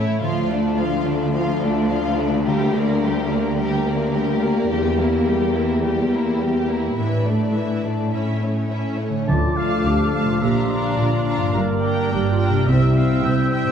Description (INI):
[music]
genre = cinematic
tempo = 106 BPM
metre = 4/4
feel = straight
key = D minor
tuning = A4 = 437 Hz
[part]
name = warm symphonic violin section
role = melody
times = 0.0-13.7 s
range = G4 to Bb5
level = -33 LUFS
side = left 2 dB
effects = none
[part]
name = rich symphonic violin section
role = second line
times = 0.0-13.7 s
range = C#4 to G5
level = -29 LUFS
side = left 1 dB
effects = none
[part]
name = rich symphonic viola section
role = accompaniment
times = 0.0-13.7 s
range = E3 to D4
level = -27 LUFS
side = right 2 dB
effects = none
[part]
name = mellow French horn section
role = sustained chords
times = 0.0-13.7 s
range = A3 to G4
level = -26 LUFS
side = left 3 dB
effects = none
[part]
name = concert harp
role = arpeggios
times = 0.0-13.7 s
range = G2 to G5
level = -27 LUFS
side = left 3 dB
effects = none
[part]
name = warm symphonic cello section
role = bass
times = 0.2-13.7 s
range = D2 to D3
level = -23 LUFS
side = equal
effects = none
[part]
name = clear oboe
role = second line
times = 9.3-13.7 s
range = D5 to A5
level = -30 LUFS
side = right 1 dB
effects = none
[part]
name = mellow clarinet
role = second line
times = 9.3-13.7 s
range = E4 to Bb4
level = -26 LUFS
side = right 2 dB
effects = none
[part]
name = mellow hollow small flute group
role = second line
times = 9.3-13.7 s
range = Bb5 to F6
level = -29 LUFS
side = left 1 dB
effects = none
[part]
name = warm trombone section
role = sustained chords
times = 9.3-13.7 s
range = C3 to G3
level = -28 LUFS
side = left 1 dB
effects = none
[part]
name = dark studio double bass section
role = bass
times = 9.3-13.7 s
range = G1 to D2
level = -24 LUFS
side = right 3 dB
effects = none
[part]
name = timpani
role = percussion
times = 9.3-10.1 s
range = D3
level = -26 LUFS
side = right 1 dB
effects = none
[sound]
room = wet scoring stage reverb, RT60 1.9 s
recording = heard from further back in the room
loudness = -18 LUFS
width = side -8 dB against mid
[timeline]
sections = 0.0-9.3 A section; 9.3-13.7 B section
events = build-up 0.0-9.3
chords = 0.2 Dm; 2.5 Gm/D; 4.7 Edim; 7.0 Asus4; 8.1 A; 9.3 Dm; 10.4 Bb; 11.5 Gm; 12.7 C